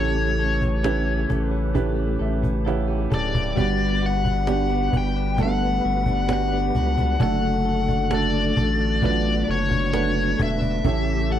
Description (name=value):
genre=pop ballad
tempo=66 BPM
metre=4/4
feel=straight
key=unclear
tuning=A4 = 440 Hz
part: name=biting lead guitar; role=melody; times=0.0-11.4 s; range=C#5 to G5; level=-26 LUFS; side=left 5 dB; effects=overdrive, slapback echo
part: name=warm grand piano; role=accompaniment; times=0.0-11.4 s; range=G2 to A5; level=-26 LUFS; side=right 7 dB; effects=none
part: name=tonewheel organ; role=sustained chords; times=0.0-11.4 s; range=C#3 to B4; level=-30 LUFS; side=left 2 dB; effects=chorus vibrato, fast rotary speaker
part: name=direct-recorded clean electric guitar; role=arpeggios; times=0.0-11.4 s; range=A2 to A4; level=-31 LUFS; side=left 15 dB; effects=none
part: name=saturated sub bass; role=bass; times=0.0-11.4 s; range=D1 to C#2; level=-25 LUFS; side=equal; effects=none
part: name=cajon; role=drums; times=0.6-11.1 s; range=none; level=-25 LUFS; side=equal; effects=none
room=studio reverb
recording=dry, close 1970s-style studio recording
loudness=-20 LUFS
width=side -10 dB against mid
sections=0.0-3.6 A section; 3.6-11.4 A section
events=grand piano fill 1.8-3.6; drum fill 2.7-3.6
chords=0.0 A7; 3.6 Gmaj7; 7.2 D/F#; 10.8 A7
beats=0.84 1.75 2.66 | 3.57 4.48 5.39 6.30 | 7.21 8.11 9.02 9.93 | 10.84